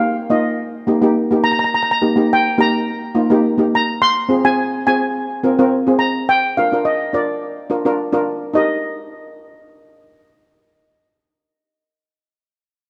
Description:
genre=calypso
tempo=105 BPM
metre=4/4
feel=straight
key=Eb major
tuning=A4 = 440 Hz
part: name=steel pan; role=melody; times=0.0-12.3 s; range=D5 to C6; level=-20 LUFS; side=equal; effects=none
part: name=steel pan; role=accompaniment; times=0.0-12.3 s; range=Bb3 to Bb4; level=-19 LUFS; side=equal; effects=none
room=moderate plate reverb, RT60 2.9 s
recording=none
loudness=-17 LUFS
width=mono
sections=0.0-8.6 A section; 8.6-10.8 B section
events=none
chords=0.0 Eb; 4.0 Fm; 6.3 Bb; 8.6 Eb

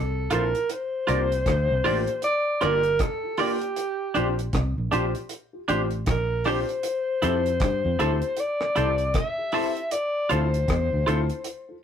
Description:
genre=lovers rock reggae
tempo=78 BPM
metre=4/4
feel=swing 60% on 16ths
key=F major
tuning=A4 = 440 Hz
part: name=breathy alto saxophone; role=melody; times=0.0-11.8 s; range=G4 to E5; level=-26 LUFS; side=left 1 dB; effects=none
part: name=fingered electric bass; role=bass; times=0.0-11.3 s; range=G1 to G2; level=-26 LUFS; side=equal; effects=none
part: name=warm grand piano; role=accompaniment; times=0.3-11.7 s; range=Bb3 to A4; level=-29 LUFS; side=left 4 dB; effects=none
part: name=semi-hollow electric guitar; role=stabs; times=0.3-11.2 s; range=D4 to D5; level=-27 LUFS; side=right 4 dB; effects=none
part: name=deep reggae drum kit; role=drums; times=0.3-11.7 s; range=hi-hat, kick drum, rim click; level=-30 LUFS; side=equal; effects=none
room=moderate studio reverb, RT60 0.6 s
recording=rough rehearsal-room recording, tube saturation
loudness=-22 LUFS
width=side -8 dB against mid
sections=0.0-11.8 A section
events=none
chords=0.0 Dm7 (rootless); 0.7 C9sus4; 3.8 Bb69; 6.8 Fmaj7; 9.9 Dm7

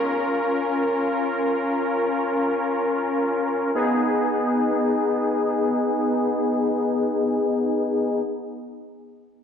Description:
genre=pop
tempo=free time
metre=none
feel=none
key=G# dorian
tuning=A4 = 438 Hz
part: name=analog synth brass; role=accompaniment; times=0.0-8.2 s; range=B3 to A#4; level=-21 LUFS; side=left 1 dB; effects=chorus, low-pass filter
room=wet plate reverb, RT60 2.4 s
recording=dreamy mix soaked in reverb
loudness=-20 LUFS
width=side -7 dB against mid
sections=0.0-3.7 A section; 3.7-7.7 B section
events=filter sweep on analog polysynth 0.0-3.7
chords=0.0 A#m; 3.7 G#m

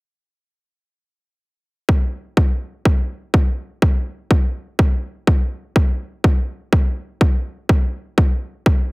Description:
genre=house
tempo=124 BPM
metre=4/4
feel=swing 55% on 16ths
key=none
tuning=none
part: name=electronic kick drum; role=drums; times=1.9-8.8 s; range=none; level=-15 LUFS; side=equal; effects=overdrive
room=little or no reverb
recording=heavily compressed radio sound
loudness=-17 LUFS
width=side -28 dB against mid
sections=1.9-8.9 A section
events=none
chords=none

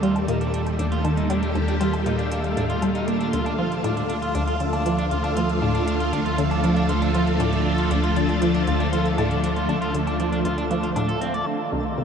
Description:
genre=ambient, sequencer-driven space music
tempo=118 BPM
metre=4/4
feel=straight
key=D phrygian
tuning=A4 = 440 Hz
part: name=phased string machine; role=sustained chords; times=0.0-12.0 s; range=Bb2 to C5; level=-25 LUFS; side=equal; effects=ensemble chorus, phaser
part: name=electric guitar at the edge of break-up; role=arpeggios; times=0.0-12.0 s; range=C4 to D5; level=-29 LUFS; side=right 2 dB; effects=auto-pan, low-pass filter, analog delay
part: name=resonant blip pluck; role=riff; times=0.0-12.0 s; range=C2 to Bb3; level=-25 LUFS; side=equal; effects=lush chorus, analog delay
part: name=warm sub bass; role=bass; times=0.0-12.0 s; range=C2 to Eb2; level=-28 LUFS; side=equal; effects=none
part: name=electronic hi-hat and woodblock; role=percussion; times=0.0-11.4 s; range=none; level=-40 LUFS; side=equal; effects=analog delay
part: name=twinkling granular texture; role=texture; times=0.0-12.0 s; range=A3 to A4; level=-30 LUFS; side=equal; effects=built-in reverb
room=wet huge ambient reverb, RT60 7.7 s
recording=cassette tape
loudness=-20 LUFS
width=side -7 dB against mid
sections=0.0-11.5 A section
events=none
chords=0.0 Ebadd9; 3.3 Dm; 11.5 Cm

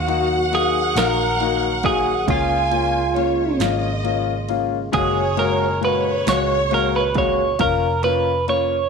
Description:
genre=six-eight pop ballad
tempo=45 BPM (dotted quarters)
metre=6/8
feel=straight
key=Eb minor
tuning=A4 = 439 Hz
part: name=twelve-string electric guitar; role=melody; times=0.0-8.9 s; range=F4 to Db5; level=-20 LUFS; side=right 4 dB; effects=spring reverb
part: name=warm studio violin section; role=second line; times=0.0-7.6 s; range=Db5 to Ab5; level=-24 LUFS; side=right 2 dB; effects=none
part: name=percussive tonewheel organ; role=sustained chords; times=0.0-7.6 s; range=Bb2 to Gb4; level=-31 LUFS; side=right 1 dB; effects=overdrive, slow rotary speaker
part: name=vintage muted fingered electric bass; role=bass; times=0.0-8.9 s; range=F1 to Eb2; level=-26 LUFS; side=right 1 dB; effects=none
part: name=warm concert grand piano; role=accompaniment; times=0.1-8.7 s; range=Ab3 to Gb4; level=-23 LUFS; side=left 14 dB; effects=none
part: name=punchy analog drum machine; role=drums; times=0.1-8.7 s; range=kick drum, ride cymbal, snare drum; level=-26 LUFS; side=right 6 dB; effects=none
room=light reverb, digital ambience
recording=1960s-style stereo with parts hard left and right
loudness=-17 LUFS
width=side -5 dB against mid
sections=0.0-8.9 A section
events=none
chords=0.0 Ebm; 2.3 Db6; 4.9 Gbadd9; 7.6 Bbm/F

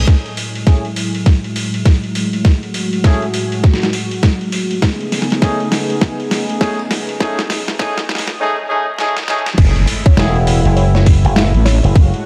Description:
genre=glitch hop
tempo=101 BPM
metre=4/4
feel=swing 61% on 16ths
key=F# dorian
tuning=A4 = 440 Hz
part: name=warm analog pad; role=sustained chords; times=0.0-12.3 s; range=A2 to G#4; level=-24 LUFS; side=equal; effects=chorus, tremolo, vintage 12-bit sampler grit, sidechain pumping
part: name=wobble bass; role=bass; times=0.0-0.1, 9.6-11.8 s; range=F#1 to A1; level=-15 LUFS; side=equal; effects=chorus, overdrive
part: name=reverse cymbal and impact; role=sound effects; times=0.0-0.1, 9.7-12.0 s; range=none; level=-29 LUFS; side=equal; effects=none
part: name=boom bap sampler-style drum kit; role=drums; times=0.1-12.2 s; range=crash cymbal, hi-hat, snare drum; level=-22 LUFS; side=equal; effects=overdrive
part: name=electronic kick drum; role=drums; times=0.1-12.1 s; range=none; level=-12 LUFS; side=equal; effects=overdrive
part: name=warm horn section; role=stabs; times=0.7-10.4 s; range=A3 to G#4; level=-24 LUFS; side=equal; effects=sidechain pumping, low-pass filter, delay
part: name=woody wave-folded pluck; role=melody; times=10.1-11.9 s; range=C#5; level=-30 LUFS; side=equal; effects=chorus, delay
part: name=slap bass with an envelope filter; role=bass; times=10.2-12.1 s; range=E1 to F#1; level=-14 LUFS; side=equal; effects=tube saturation
room=light reverb, digital ambience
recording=dark, warm production, vinyl crackle, high-pass filter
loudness=-15 LUFS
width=mono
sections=0.1-9.6 A section; 9.6-12.3 B section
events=build-up 0.1-9.6; drum fill 0.1-8.4, 9.0-9.6; filter sweep on horn section 0.1-9.6; filter sweep on analog synth pad 0.1-9.6; filter sweep 0.1-9.6; drop 9.6-12.3; impact 9.6-12.0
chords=0.1 F#m9; 4.8 B13; 9.6 F#m9

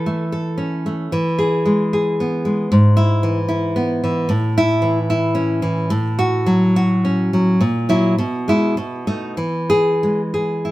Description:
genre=romantic piece for solo classical guitar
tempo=92-119 BPM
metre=3/4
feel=rubato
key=E major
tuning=A4 = 440 Hz
part: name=nylon-string guitar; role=solo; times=0.0-10.7 s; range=G#2 to A4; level=-16 LUFS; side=equal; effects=none
room=moderate stone room reverb, RT60 0.9 s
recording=band playing live in one room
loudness=-16 LUFS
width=side -17 dB against mid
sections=0.0-10.7 A section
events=none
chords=0.0 A/E; 1.1 E; 2.7 E/G#; 4.3 A; 5.9 F#m/A; 7.6 F#7/A#; 8.2 E/B; 8.8 B7; 9.4 E

